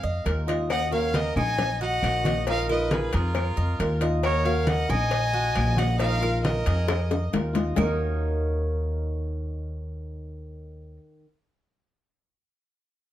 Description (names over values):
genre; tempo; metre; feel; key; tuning
latin, Cuban son and guajira; 136 BPM; 4/4; straight; Eb minor; A4 = 437 Hz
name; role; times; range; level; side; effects
clear violin; melody; 0.0-7.3 s; Bb4 to Ab5; -29 LUFS; equal; none
Cuban tres; arpeggios; 0.0-11.0 s; Eb4 to Eb5; -31 LUFS; right 3 dB; none
upright bass; bass; 0.0-11.0 s; Bb1 to F2; -27 LUFS; equal; none
congas; percussion; 0.0-7.9 s; none; -31 LUFS; equal; none
flamenco guitar; accompaniment; 0.2-11.3 s; Eb3 to Gb4; -33 LUFS; left 3 dB; none
cowbell and bongos; percussion; 0.3-7.9 s; none; -31 LUFS; left 5 dB; none
bright trumpet; second line; 0.7-7.3 s; F4 to Eb5; -34 LUFS; right 2 dB; none
claves; percussion; 0.7-7.9 s; none; -40 LUFS; equal; none
room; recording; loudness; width
moderate studio reverb, RT60 0.6 s; dark, warm production; -22 LUFS; side -12 dB against mid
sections
0.0-7.8 A section; 7.8-11.3 B section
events
drum fill 6.9-7.8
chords
0.0 Bb7sus4; 0.7 Ebm7; 2.5 Bb7sus4; 4.2 Ebm7; 6.0 Bb7sus4; 7.8 Ebm7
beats
0.26 | 0.70 1.14 1.59 2.03 | 2.47 2.91 3.36 3.80 | 4.24 4.68 5.12 5.57 | 6.01 6.45 6.89 7.33 | 7.77 8.21 8.66 9.10 | 9.54 9.98 10.42 10.86